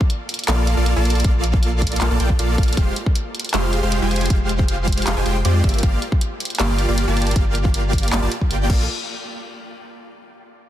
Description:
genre	future bass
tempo	157 BPM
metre	4/4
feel	half-time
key	Bb major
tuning	A4 = 440 Hz
part	electronic kick drum	drums	0.0-8.8 s	none	-19 LUFS	equal	none
part	pop drum kit	drums	0.1-8.8 s	crash cymbal, handclaps, hi-hat	-26 LUFS	equal	none
part	dense compressed supersaw	riff	0.5-8.8 s	Ab3 to A5	-23 LUFS	right 1 dB	sidechain pumping, dub echo
part	saturated sub bass	bass	0.5-8.9 s	F1 to F2	-20 LUFS	equal	sidechain pumping
room	little or no reverb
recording	dense, heavily limited modern master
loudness	-17 LUFS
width	side -12 dB against mid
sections	0.0-8.9 A section; 8.9-10.4 B section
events	drop 0.0-8.9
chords	0.0 Bbmaj7; 2.8 Fmadd9; 5.6 Gm7; 8.7 Bbmaj7; 8.9 N.C.

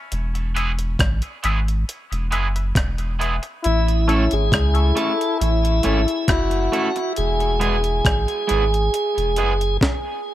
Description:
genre	dub reggae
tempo	68 BPM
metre	4/4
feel	straight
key	unclear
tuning	A4 = 439 Hz
part	warm sub bass	bass	0.1-9.8 s	E1 to C#2	-21 LUFS	equal	none
part	breakbeat sampler-style drum kit	drums	0.1-10.0 s	hi-hat, kick drum, rim click, snare drum	-22 LUFS	equal	none
part	electric guitar at the edge of break-up	accompaniment	0.5-9.5 s	G#3 to A4	-27 LUFS	right 4 dB	high-pass filter, tape echo
part	filtered dub chord stab	stabs	0.6-4.3 s	E4 to E5	-32 LUFS	left 4 dB	phaser, high-pass filter, tape echo
part	warm trombone	second line	3.6-6.9 s	C#4 to E4	-27 LUFS	left 4 dB	high-pass filter, tape echo
part	tonewheel organ	melody	3.7-9.8 s	E4 to A4	-22 LUFS	right 1 dB	overdrive, slow rotary speaker, tape echo
room	digital ambience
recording	none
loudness	-18 LUFS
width	side -13 dB against mid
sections	0.0-10.3 A section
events	break 0.0-3.6; stop 9.8-10.3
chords	0.1 E; 3.6 A; 7.2 E

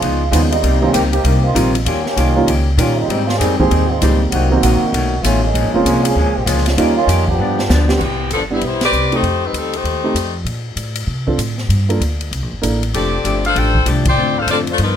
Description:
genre	jazz, big band swing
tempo	195 BPM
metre	4/4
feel	swing 62% on 8ths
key	Ab major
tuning	A4 = 439 Hz
part	muted trombone section	second line	0.0-7.8 s	Eb3 to Ab4	-19 LUFS	right 2 dB	none
part	vintage hollow-body jazz guitar	accompaniment	0.0-7.9, 12.9-15.0 s	G2 to G4	-21 LUFS	left 4 dB	none
part	upright bass	bass	0.0-15.0 s	F1 to C3	-18 LUFS	equal	none
part	swinging big-band drum kit	drums	0.0-14.9 s	crash cymbal, hi-hat, kick drum, ride cymbal, snare drum	-23 LUFS	left 1 dB	none
part	warm grand piano	accompaniment	0.3-12.8 s	Eb3 to A4	-18 LUFS	right 3 dB	none
part	clear saxophone section	melody	8.0-10.4, 13.0-15.0 s	E3 to G5	-17 LUFS	left 3 dB	none
room	light reverb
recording	close, detailed microphones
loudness	-13 LUFS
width	side -9 dB against mid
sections	0.0-8.0 A section; 8.0-15.0 B section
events	trombone section solo 0.0-8.0; drum fill 7.4-8.0; band accent 8.8, 14.0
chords	0.0 Db9; 0.6 Cm7; 1.9 Eb7; 3.1 Abmaj7; 4.3 Cm7b5; 4.9 B9; 5.5 Bbm7; 6.8 Eb7; 7.4 G7; 8.0 Cmaj7; 9.2 F9; 10.5 Bbmaj7sus2; 11.7 Gm7; 12.3 C13; 12.9 F69; 14.2 Dm7

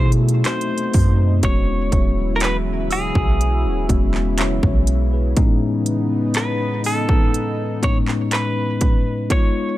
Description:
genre	contemporary R&B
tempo	61 BPM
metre	4/4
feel	straight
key	unclear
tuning	A4 = 439 Hz
part	direct-recorded clean electric guitar	melody	0.0-9.8 s	G#4 to C#5	-25 LUFS	equal	tape echo
part	mellow tine electric piano	accompaniment	0.0-9.8 s	A2 to E5	-22 LUFS	left 4 dB	none
part	lush unison pad	sustained chords	0.0-9.3 s	B2 to E4	-28 LUFS	right 1 dB	chorus
part	clean 808-style bass	bass	0.0-5.3 s	D#1 to B2	-19 LUFS	right 1 dB	none
part	industrial drum kit	drums	0.1-9.5 s	handclaps, hi-hat, kick drum	-19 LUFS	right 1 dB	none
part	soft synth bell	texture	2.9-4.4 s	E6	-37 LUFS	right 2 dB	none
room	little or no reverb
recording	none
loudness	-16 LUFS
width	side -15 dB against mid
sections	0.0-9.8 A section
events	none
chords	0.5 B7b9; 1.4 E69; 5.4 Amaj9#11

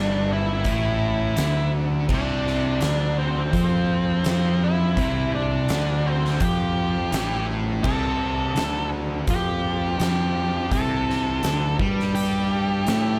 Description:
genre	stoner and doom metal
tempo	84 BPM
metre	4/4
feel	straight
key	unclear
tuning	A4 = 440 Hz
part	octave-fuzz lead guitar	melody	0.0-13.2 s	C4 to A4	-30 LUFS	equal	distortion, digital delay
part	fuzz guitar	riff	0.0-13.2 s	G2 to A3	-29 LUFS	equal	distortion
part	thick fuzz guitar	riff	0.0-13.2 s	G2 to A3	-30 LUFS	equal	distortion
part	fuzz fingered electric bass	bass	0.0-13.2 s	G1 to A2	-30 LUFS	equal	overdrive
part	oversized low-tuned drum kit	drums	0.6-13.0 s	crash cymbal, hi-hat, kick drum, snare drum	-31 LUFS	equal	none
room	light reverb, small room ambience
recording	none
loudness	-23 LUFS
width	mono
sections	0.0-13.2 A section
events	none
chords	0.0 Em; 2.1 C5

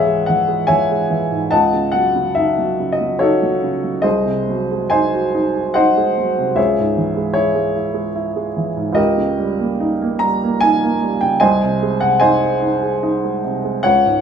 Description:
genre	classical, romantic character piece for solo piano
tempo	73 BPM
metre	3/4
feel	uneven beats, rubato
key	unclear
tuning	A4 = 440 Hz
part	warm upright piano	solo	0.0-14.2 s	B#1 to A#5	-14 LUFS	equal	none
room	moderate large studio reverb, RT60 0.9 s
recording	minimal, uncompressed stereo recording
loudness	-15 LUFS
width	side -7 dB against mid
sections	0.0-14.2 A section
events	none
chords	0.0 C#m; 1.5 D#m7b5/C#; 4.0 G#7/B#; 6.6 C#m; 9.0 D#7/C#; 11.4 G#/B#

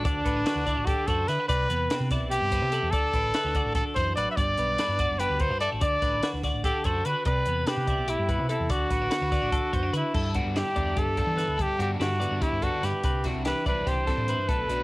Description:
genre	math rock and midwest emo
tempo	292 BPM (eighths)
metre	7/8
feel	straight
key	G major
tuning	A4 = 438 Hz
part	warm trumpet	melody	0.0-14.8 s	D4 to E5	-28 LUFS	equal	cassette tape
part	twelve-string electric guitar	accompaniment	0.0-14.8 s	G2 to F#4	-34 LUFS	right 3 dB	cassette tape
part	twelve-string electric guitar	arpeggios	0.0-14.8 s	F#4 to D5	-34 LUFS	left 3 dB	cassette tape
part	fingered electric bass	bass	0.0-14.8 s	F#1 to E3	-31 LUFS	equal	none
part	compact cocktail drum kit	drums	0.0-14.8 s	crash cymbal, hi-hat, kick drum, snare drum	-30 LUFS	equal	cassette tape
part	crunchy overdriven guitar	riff	10.3-14.8 s	B2 to E4	-36 LUFS	equal	cassette tape
room	small room ambience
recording	home recording on cassette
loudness	-24 LUFS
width	side -20 dB against mid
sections	0.0-10.1 A section; 10.1-14.8 B section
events	none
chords	0.1 D; 1.5 Cmaj7; 2.9 D; 4.4 Gmaj7; 5.8 D; 7.3 Cmaj7; 8.7 D; 10.1 G69; 13.0 Cmaj9

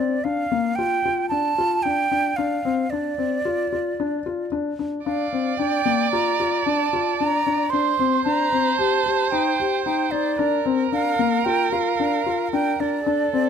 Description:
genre	contemporary instrumental, chamber music in an uneven meter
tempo	112 BPM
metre	5/4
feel	straight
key	G minor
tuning	A4 = 440 Hz
part	mellow silver concert flute	melody	0.0-13.5 s	D5 to C6	-23 LUFS	right 4 dB	none
part	felt-muted upright piano	arpeggios	0.0-13.5 s	Bb3 to G4	-23 LUFS	left 6 dB	none
part	dark erhu	second line	5.1-13.5 s	A4 to D5	-25 LUFS	right 9 dB	none
room	light reverb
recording	close, detailed microphones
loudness	-20 LUFS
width	side -7 dB against mid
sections	0.0-13.5 A section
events	none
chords	0.0 G7(no3); 2.4 Dm7; 5.1 Gm7 (rootless); 7.7 Eb6; 10.4 Bb6

